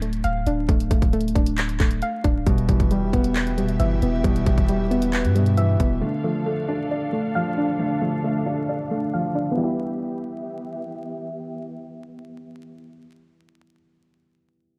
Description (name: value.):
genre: hip hop, trap.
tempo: 135 BPM.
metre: 4/4.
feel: half-time.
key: E phrygian.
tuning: A4 = 440 Hz.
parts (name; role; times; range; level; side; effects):
soft round pluck; arpeggios; 0.0-13.1 s; G3 to F5; -28 LUFS; equal; chorus, low-pass filter, delay.
long sustained 808-style bass; bass; 0.0-6.0 s; D1 to G2; -26 LUFS; equal; none.
trap drum kit; drums; 0.0-5.9 s; handclaps, hi-hat, kick drum; -24 LUFS; equal; none.
dark baby grand piano; accompaniment; 2.5-14.8 s; B2 to D5; -29 LUFS; equal; low-pass filter.
dark studio string section; sustained chords; 2.5-13.0 s; D3 to F5; -35 LUFS; equal; low-pass filter.
room: light reverb.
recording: dark, warm production, vinyl crackle.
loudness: -22 LUFS.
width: mono.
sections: 0.0-2.5 A section; 2.5-9.6 B section; 9.6-13.1 C section.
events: none.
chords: 0.0 Dm; 2.5 Em; 6.0 Dm; 9.6 Em.